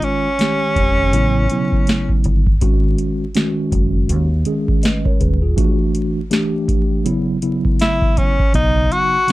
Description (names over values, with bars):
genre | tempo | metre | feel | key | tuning
hip hop, jazz-hop | 81 BPM | 4/4 | swing 60% on 16ths | unclear | A4 = 439 Hz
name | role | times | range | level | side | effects
bright tenor saxophone | melody | 0.0-2.3, 7.8-9.3 s | Db4 to F#4 | -18 LUFS | equal | none
mellow tine electric piano | accompaniment | 0.0-9.3 s | B2 to Eb5 | -20 LUFS | right 1 dB | medium stereo tremolo
booming analog drum machine | drums | 0.0-9.3 s | hi-hat, kick drum, snare drum | -18 LUFS | equal | none
deep dub fingered electric bass | bass | 0.8-8.9 s | Eb1 to Eb2 | -18 LUFS | equal | none
room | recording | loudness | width
light reverb | dark, warm production, vinyl crackle | -14 LUFS | side -17 dB against mid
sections
0.0-9.3 A section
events
kick muted 8.5-9.3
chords
0.0 Bbm7 (rootless); 1.1 A13; 2.6 Ab5; 5.6 Em7; 7.1 Bsus24/C#; 8.5 B